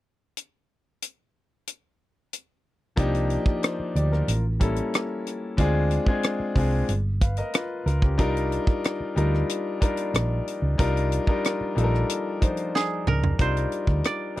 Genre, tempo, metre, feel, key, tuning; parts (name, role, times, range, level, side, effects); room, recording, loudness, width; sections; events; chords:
lush 1970s-style soul; 92 BPM; 4/4; straight; C minor; A4 = 440 Hz
tight funk drum kit; drums; 0.4-14.4 s; hi-hat, kick drum, rim click, snare drum, toms; -24 LUFS; equal
clear grand piano; accompaniment; 3.0-14.4 s; F3 to F5; -27 LUFS; left 2 dB
hollow-body short-scale fingered electric bass; bass; 3.0-14.4 s; G1 to D2; -24 LUFS; equal; tube saturation
koto; melody; 12.8-14.4 s; Ab4 to D5; -29 LUFS; right 5 dB
little or no reverb; dry, close 1970s-style studio recording; -22 LUFS; side -15 dB against mid
0.4-3.0 A section; 3.0-13.4 B section; 13.4-14.4 C section
drum fill 12.7-13.4
0.4 N.C.; 3.0 Cm11; 4.3 A7b9; 5.6 Dm7b5; 6.9 G7alt; 8.2 Cm11